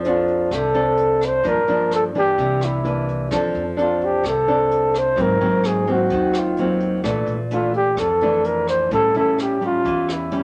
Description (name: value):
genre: bossa nova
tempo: 129 BPM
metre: 4/4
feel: straight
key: F major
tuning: A4 = 441 Hz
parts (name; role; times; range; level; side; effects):
- nylon-string guitar; accompaniment; 0.0-10.4 s; F2 to A4; -23 LUFS; equal; none
- upright bass; bass; 0.0-10.4 s; A1 to Ab2; -33 LUFS; equal; none
- jazz brush drum kit; drums; 0.0-10.4 s; hi-hat, kick drum, rim click; -37 LUFS; equal; none
- breathy flugelhorn; melody; 0.1-10.4 s; E4 to C5; -22 LUFS; equal; none
room: moderate club reverb, RT60 0.7 s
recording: none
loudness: -19 LUFS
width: mono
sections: 0.0-3.3 A section; 3.3-10.4 A section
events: none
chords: 0.0 F6; 1.4 Gm7; 2.4 C9; 3.3 F6; 5.2 Ab9; 7.0 Bbmaj7#11; 8.9 A7